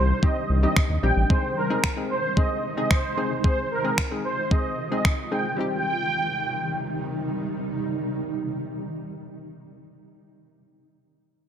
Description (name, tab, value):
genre	dance-pop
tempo	112 BPM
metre	4/4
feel	straight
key	C minor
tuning	A4 = 441 Hz
part	filtered supersaw swell	melody	0.0-7.2 s	Bb4 to G5	-27 LUFS	right 2 dB	lush chorus, sidechain pumping, digital delay
part	hollow square pluck	accompaniment	0.0-9.4 s	G3 to Ab4	-30 LUFS	left 3 dB	chorus, sidechain pumping
part	granular cloud pad	sustained chords	0.0-9.4 s	C3 to F4	-31 LUFS	equal	built-in reverb, sidechain pumping
part	round analog bass	bass	0.0-1.2 s	A1 to Eb2	-20 LUFS	equal	sidechain pumping
part	clean 12-bit digital drum machine	drums	0.2-5.2 s	finger snaps, kick drum	-22 LUFS	equal	gated reverb
room	light reverb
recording	bright 1980s-style digital production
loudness	-22 LUFS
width	side -9 dB against mid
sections	0.0-5.6 A section; 5.6-9.9 B section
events	none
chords	0.0 Cm; 1.3 Ab; 5.6 Cm